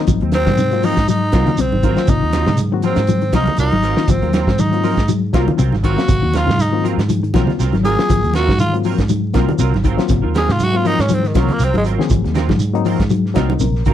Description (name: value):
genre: afrobeat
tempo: 120 BPM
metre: 4/4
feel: swing 55% on 16ths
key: Ab mixolydian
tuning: A4 = 440 Hz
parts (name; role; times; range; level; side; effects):
- reed electric piano; accompaniment; 0.0-13.9 s; Gb3 to Bb5; -22 LUFS; left 11 dB; none
- mellow electric guitar; arpeggios; 0.0-13.9 s; C3 to Gb3; -21 LUFS; left 8 dB; tremolo
- vintage muted fingered electric bass; bass; 0.1-13.9 s; Ab1 to Ab2; -19 LUFS; right 1 dB; none
- warm soul drum kit; drums; 0.1-13.9 s; hi-hat, kick drum, snare drum; -20 LUFS; right 1 dB; none
- congas; percussion; 0.1-13.9 s; none; -23 LUFS; right 4 dB; none
- shekere; percussion; 0.1-13.9 s; none; -25 LUFS; right 4 dB; none
- semi-hollow electric guitar; stabs; 0.2-13.9 s; Gb3 to Bb4; -25 LUFS; right 10 dB; ensemble chorus
- raspy tenor saxophone; melody; 0.3-11.8 s; Eb3 to Ab4; -19 LUFS; equal; none
room: studio reverb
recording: none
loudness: -13 LUFS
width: side -11 dB against mid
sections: 0.0-13.9 A section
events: tenor saxophone solo 0.0-13.9; reed electric piano fill 13.4-13.9; drum fill 13.5-13.9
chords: 0.0 Ab13